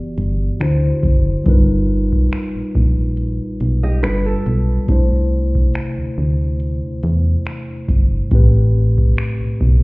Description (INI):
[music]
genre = contemporary R&B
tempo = 70 BPM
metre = 4/4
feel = swing 54% on 16ths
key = unclear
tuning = A4 = 439 Hz
[part]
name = mellow tine electric piano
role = accompaniment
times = 0.0-9.8 s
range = A2 to D5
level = -20 LUFS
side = left 1 dB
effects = medium stereo tremolo
[part]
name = solid FM bass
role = bass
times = 0.2-9.8 s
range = F#1 to E2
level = -17 LUFS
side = equal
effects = none
[part]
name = booming analog drum machine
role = drums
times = 0.2-9.8 s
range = finger snaps, hi-hat, kick drum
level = -14 LUFS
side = equal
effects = none
[part]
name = nylon-string guitar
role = arpeggios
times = 3.8-4.9 s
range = D4 to D#5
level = -27 LUFS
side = right 3 dB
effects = tape echo
[sound]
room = digital ambience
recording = heard muffled through a wall, stone room reverb, EQ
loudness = -14 LUFS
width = side -25 dB against mid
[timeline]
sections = 0.0-9.8 A section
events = none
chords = 0.0 Em9; 0.6 D9; 1.5 G7alt; 4.0 G9; 4.9 C69; 8.3 Am9